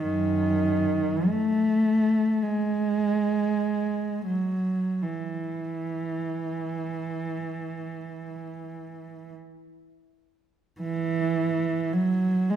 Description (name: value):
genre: classical, free, expressive piece for unaccompanied cello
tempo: free time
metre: none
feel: none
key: unclear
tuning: A4 = 440 Hz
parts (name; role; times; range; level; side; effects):
- dark cello; solo; 0.0-12.6 s; F#2 to A3; -24 LUFS; right 1 dB; none
room: moderate scoring stage reverb, RT60 1.7 s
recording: none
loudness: -24 LUFS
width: side -9 dB against mid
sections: 0.0-10.8 A section; 10.8-12.6 B section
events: none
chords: none